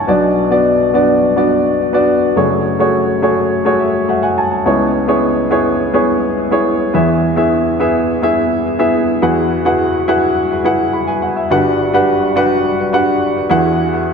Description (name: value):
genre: pop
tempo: 105 BPM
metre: 4/4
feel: straight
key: unclear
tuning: A4 = 440 Hz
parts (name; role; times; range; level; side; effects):
- dark baby grand piano; solo; 0.0-14.1 s; F#1 to B5; -12 LUFS; equal; tape echo
room: wet concert hall reverb, RT60 2.0 s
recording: none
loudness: -12 LUFS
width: side -6 dB against mid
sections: 0.1-9.2 A section; 9.2-14.1 B section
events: grand piano fill 3.5-4.7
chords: 0.1 Bm; 2.4 F#madd9; 4.7 C#m7; 6.9 E; 9.2 Eadd9; 11.5 Gmaj7; 13.5 Eadd9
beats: | 0.08 0.65 1.22 1.79 | 2.37 2.94 3.51 4.08 | 4.65 5.22 5.79 6.37 | 6.94 7.51 8.08 8.65 | 9.22 9.79 10.37 10.94 | 11.51 12.08 12.65 13.22 | 13.79